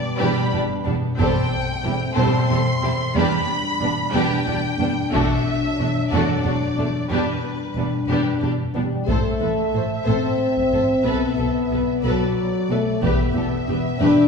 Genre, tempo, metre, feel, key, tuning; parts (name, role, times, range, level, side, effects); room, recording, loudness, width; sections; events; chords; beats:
cinematic, epic orchestral film score; 61 BPM (dotted quarters); 6/8; straight; A4 = 440 Hz
warm symphonic violin section; melody; 0.0-14.3 s; B4 to C6; -28 LUFS; left 1 dB
dark French horn section; sustained chords; 0.0-14.3 s; F#3 to D4; -23 LUFS; left 2 dB
warm symphonic violin section; second line; 0.2-14.3 s; A3 to C5; -28 LUFS; left 2 dB
rich symphonic viola section; accompaniment; 0.2-14.3 s; G3 to A4; -29 LUFS; right 1 dB
dark studio double bass section; bass; 0.2-14.1 s; E1 to B1; -25 LUFS; right 2 dB
warm symphonic cello section; bass; 0.2-14.1 s; E2 to B2; -27 LUFS; right 2 dB
taiko ensemble; drums; 1.2-14.3 s; -28 LUFS; left 1 dB
wet recital hall reverb, RT60 1.6 s; recorded in a church or concert hall; -18 LUFS; side -5 dB against mid
0.0-9.1 A section; 9.1-14.3 B section
0.0 G/E; 1.2 C6/E; 3.2 G/E; 5.1 D/E; 7.1 G/E; 9.1 Am; 11.1 Bm7; 13.0 Em
0.20 | 1.18 2.17 | 3.16 4.14 | 5.13 6.12 | 7.11 8.09 | 9.08 10.06 | 11.05 12.04 | 13.02 14.01